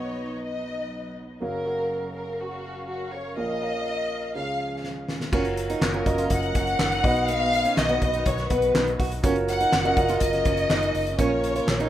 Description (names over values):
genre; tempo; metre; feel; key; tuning
piano-driven pop; 123 BPM; 4/4; straight; F# major; A4 = 440 Hz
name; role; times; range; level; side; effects
warm studio violin section; melody; 0.0-11.9 s; F#4 to F#5; -26 LUFS; left 2 dB; none
warm concert grand piano; accompaniment; 0.0-11.9 s; F#1 to F#5; -28 LUFS; right 2 dB; none
muted studio string section; sustained chords; 0.0-11.9 s; C#3 to E#5; -38 LUFS; left 1 dB; none
loose indie drum kit; drums; 4.8-11.9 s; crash cymbal, handclaps, hi-hat, kick drum, snare drum; -26 LUFS; equal; none
picked old ladder-braced acoustic guitar; riff; 5.3-11.9 s; B3 to F#4; -30 LUFS; right 4 dB; none
vintage muted fingered electric bass; bass; 5.3-11.9 s; F#1 to B1; -30 LUFS; equal; none
room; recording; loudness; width
wet small room reverb, RT60 0.6 s; rough home demo mix; -22 LUFS; side -12 dB against mid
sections
0.0-5.3 A section; 5.3-11.9 B section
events
drum fill 4.8-5.3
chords
0.0 B; 1.4 F#maj7; 3.4 A#m; 4.4 C#; 5.3 F#maj7; 7.0 B; 9.2 F#maj7; 11.2 A#m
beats
0.43 0.93 | 1.41 1.90 2.39 2.88 | 3.37 3.86 4.35 4.84 | 5.33 5.82 6.31 6.79 | 7.28 7.77 8.26 8.75 | 9.24 9.72 10.21 10.70 | 11.19 11.68